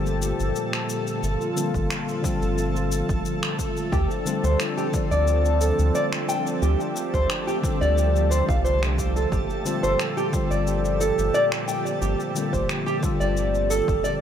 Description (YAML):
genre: organic downtempo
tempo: 89 BPM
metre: 4/4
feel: straight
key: G minor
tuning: A4 = 440 Hz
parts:
  - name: mellow tine electric piano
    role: accompaniment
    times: 0.0-14.2 s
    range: D3 to D5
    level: -30 LUFS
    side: left 5 dB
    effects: lush chorus, sidechain pumping, tape echo
  - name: warm analog pad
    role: sustained chords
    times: 0.0-14.2 s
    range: Bb2 to A4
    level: -29 LUFS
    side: right 1 dB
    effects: chorus, tremolo, sidechain pumping
  - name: round analog bass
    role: bass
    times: 0.0-14.0 s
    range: G1 to D2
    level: -24 LUFS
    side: equal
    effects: sidechain pumping
  - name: twinkling granular texture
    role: texture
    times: 0.0-14.2 s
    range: A3 to A4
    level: -34 LUFS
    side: left 1 dB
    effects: built-in reverb
  - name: electronic cabasa and finger snaps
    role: drums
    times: 0.1-14.2 s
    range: none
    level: -33 LUFS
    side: left 1 dB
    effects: none
  - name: electronic kick drum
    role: drums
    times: 1.7-14.0 s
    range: none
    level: -28 LUFS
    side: equal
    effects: overdrive
  - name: nylon-string guitar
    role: arpeggios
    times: 3.9-14.1 s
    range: G4 to G5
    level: -25 LUFS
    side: equal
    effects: tape echo
room: light reverb, digital ambience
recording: none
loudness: -21 LUFS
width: side -9 dB against mid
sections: 0.0-14.2 A section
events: none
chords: 0.0 Gm9; 3.9 Dm7; 9.3 Gm9